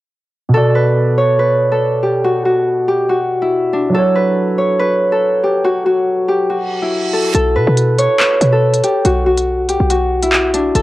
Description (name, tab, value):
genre	hip hop, drill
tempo	141 BPM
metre	4/4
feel	half-time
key	B minor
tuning	A4 = 440 Hz
part	Celtic harp	melody	0.5-10.8 s	D4 to C#5	-14 LUFS	left 1 dB	none
part	dark grand piano	accompaniment	0.5-7.4 s	B2 to D5	-18 LUFS	right 2 dB	cassette tape
part	reverse cymbal	sound effects	6.6-7.3 s	none	-23 LUFS	right 5 dB	none
part	short 808-style bass	bass	7.3-10.8 s	F#1 to B2	-16 LUFS	equal	none
part	drill drum kit	drums	7.3-10.8 s	handclaps, hi-hat	-17 LUFS	equal	vintage 12-bit sampler grit, cassette tape
room	light reverb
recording	home recording on cassette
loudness	-12 LUFS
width	side -16 dB against mid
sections	0.5-7.3 A section; 7.3-10.8 B section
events	reverse cymbal 6.6-7.3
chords	0.5 Bm; 3.9 F#m; 7.3 B5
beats	| 0.54 0.96 1.39 1.81 | 2.24 2.67 3.09 3.52 | 3.94 4.37 4.79 5.22 | 5.64 6.07 6.50 6.92 | 7.35 7.77 8.20 8.62 | 9.05 9.47 9.90 10.33 | 10.75